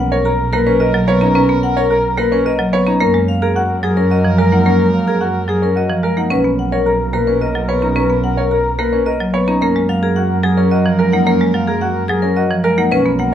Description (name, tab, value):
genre	classical, minimalist pattern music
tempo	109 BPM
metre	3/4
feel	straight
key	F# major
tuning	A4 = 440 Hz
part	vibraphone with hard mallets	melody	0.0-13.3 s	G#4 to A#5	-18 LUFS	left 6 dB	none
part	warm soprano saxophone	second line	0.0-13.3 s	A#4	-26 LUFS	right 5 dB	none
part	marimba with hard mallets	accompaniment	0.0-13.3 s	E#3 to C#4	-18 LUFS	right 1 dB	none
part	rich studio double bass section	bass	0.0-13.3 s	B1 to F#2	-19 LUFS	right 2 dB	none
part	clear concert grand piano	arpeggios	0.1-13.1 s	C#4 to C#5	-21 LUFS	right 3 dB	none
room	moderate large studio reverb, RT60 1.2 s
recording	none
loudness	-12 LUFS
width	side -10 dB against mid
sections	0.0-13.3 A section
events	none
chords	0.0 Bmaj7(no3); 3.0 F#add9; 6.3 Bmaj7(no3); 9.6 F#add9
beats	0.26 0.81 | 1.36 1.91 2.46 | 3.01 3.56 4.11 | 4.66 5.21 5.76 | 6.31 6.86 7.41 | 7.96 8.51 9.06 | 9.61 10.16 10.71 | 11.27 11.82 12.37 | 12.92